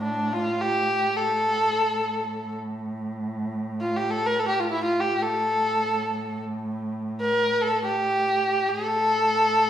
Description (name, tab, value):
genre	Persian modal ensemble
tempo	free time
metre	none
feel	none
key	A dastgah shur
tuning	A4 = 440 Hz
part	rich kamancheh	melody	0.0-9.7 s	D4 to Bb4+46c	-22 LUFS	equal	none
part	muted cello	drone	0.0-9.7 s	A2	-32 LUFS	right 1 dB	none
room	wet recital hall reverb, RT60 1.5 s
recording	recorded in a church or concert hall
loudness	-22 LUFS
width	side -10 dB against mid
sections	0.0-9.7 A section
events	none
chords	none